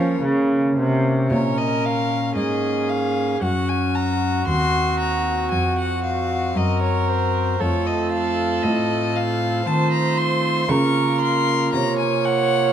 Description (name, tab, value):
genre	classical, baroque-style sonata movement with continuo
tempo	58 BPM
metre	3/4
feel	straight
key	Bb minor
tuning	A4 = 439 Hz
part	warm violin	melody	0.0-12.7 s	C5 to Db6	-25 LUFS	left 6 dB	none
part	dark violin	second line	0.0-12.7 s	Db4 to Db5	-24 LUFS	right 6 dB	none
part	pipe organ, foundations	accompaniment	0.0-12.7 s	Eb2 to Bb4	-22 LUFS	left 1 dB	none
part	warm cello	bass	0.0-12.7 s	Eb2 to F3	-24 LUFS	right 1 dB	none
room	wet recital hall reverb, RT60 1.4 s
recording	none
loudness	-18 LUFS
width	side -9 dB against mid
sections	0.0-1.3 A section; 1.3-12.7 B section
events	none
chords	0.0 Bbm; 3.4 Gb; 4.5 Cdim/Eb; 7.6 F; 9.7 F7/Eb; 10.7 Bbm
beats	0.23 | 1.31 2.36 3.42 | 4.47 5.52 6.57 | 7.61 8.64 9.67 | 10.70 11.74